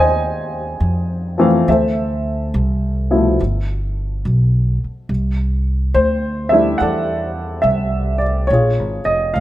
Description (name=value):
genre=jazz ballad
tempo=70 BPM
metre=4/4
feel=swing 69% on 8ths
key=unclear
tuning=A4 = 441 Hz
part: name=warm baby grand piano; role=accompaniment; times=0.0-9.4 s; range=Cb3 to Bb5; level=-16 LUFS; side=equal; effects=none
part: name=upright bass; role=bass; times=0.0-9.4 s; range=F1 to F2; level=-18 LUFS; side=equal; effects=none
room=light reverb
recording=none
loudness=-15 LUFS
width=side -14 dB against mid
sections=0.0-9.4 A section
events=none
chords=0.0 Fm7; 1.7 Dm9; 3.4 G69; 5.1 C69; 8.5 Bbm7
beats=0.81 | 1.67 2.53 3.39 4.25 | 5.09 5.94 6.79 7.64 | 8.49 9.34